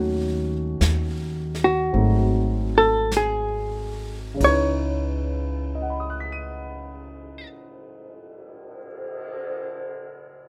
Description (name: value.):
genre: jazz ballad.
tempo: 45-57 BPM.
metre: 4/4.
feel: swing 68% on 8ths.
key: C# minor.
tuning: A4 = 444 Hz.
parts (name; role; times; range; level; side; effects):
warm grand piano; accompaniment; 0.0-10.5 s; C#3 to D#7; -31 LUFS; equal; none.
upright bass; bass; 0.0-7.4 s; G#1 to D#2; -28 LUFS; equal; none.
jazz brush drum kit; drums; 0.8-9.5 s; brushed snare drum, cymbal swell, hi-hat, kick drum, ride cymbal, snare drum; -35 LUFS; equal; none.
hollow-body jazz guitar; melody; 1.6-7.5 s; F#4 to C#5; -24 LUFS; equal; none.
room: light reverb.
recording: none.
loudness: -24 LUFS.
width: mono.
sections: 0.0-4.4 A section; 4.4-9.7 B section.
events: slowing down 0.0-4.4.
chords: 0.0 D#m7b5; 1.9 G#7b9; 4.4 C#m9.